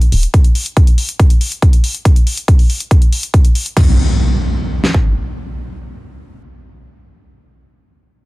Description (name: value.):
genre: uplifting trance.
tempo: 140 BPM.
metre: 4/4.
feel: straight.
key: none.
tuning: none.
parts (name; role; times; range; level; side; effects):
big-room dance drum kit; drums; 0.0-3.9 s; crash cymbal, hi-hat; -23 LUFS; left 2 dB; small room ambience.
big-room dance drum kit; drums; 0.3-5.0 s; kick drum, snare drum; -9 LUFS; equal; small room ambience.
impact; sound effects; 3.8-7.0 s; none; -17 LUFS; equal; none.
room: little or no reverb.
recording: none.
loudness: -10 LUFS.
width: side -20 dB against mid.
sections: 0.0-3.8 A section; 3.8-7.2 B section.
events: none.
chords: none.